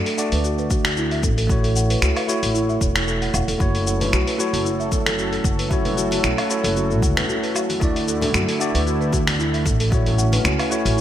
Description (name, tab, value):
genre	organic downtempo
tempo	114 BPM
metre	4/4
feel	swing 54% on 16ths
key	F# minor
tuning	A4 = 443 Hz
part	bell-like tine electric piano	accompaniment	0.0-11.0 s	A3 to D5	-24 LUFS	equal	medium stereo tremolo, sidechain pumping, digital delay
part	buzzing marimba with soft mallets	arpeggios	0.0-11.0 s	E4 to F#5	-26 LUFS	left 1 dB	digital delay
part	dusty soul sampler-style drum kit	drums	0.1-11.0 s	cabasa, finger snaps, hi-hat, woodblock	-24 LUFS	left 1 dB	gated reverb
part	upright bass	bass	0.3-11.0 s	E1 to F#2	-23 LUFS	equal	none
part	electronic kick drum	drums	0.7-10.0 s	none	-22 LUFS	equal	none
part	warm analog pad	sustained chords	3.6-11.0 s	D3 to A4	-29 LUFS	right 2 dB	chorus, sidechain pumping
part	congas	percussion	4.0-10.4 s	none	-33 LUFS	left 2 dB	none
room	moderate lush hall reverb, RT60 1.8 s, digital ambience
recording	bright 1980s-style digital production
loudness	-18 LUFS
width	side -11 dB against mid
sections	0.0-11.0 A section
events	none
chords	0.0 D; 1.5 A6; 3.6 F#m7; 7.8 D; 9.9 A6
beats	0.45 0.97 | 1.50 2.02 2.55 3.08 | 3.60 4.13 4.66 5.18 | 5.71 6.24 6.76 7.29 | 7.82 8.34 8.87 9.39 | 9.92 10.45 10.97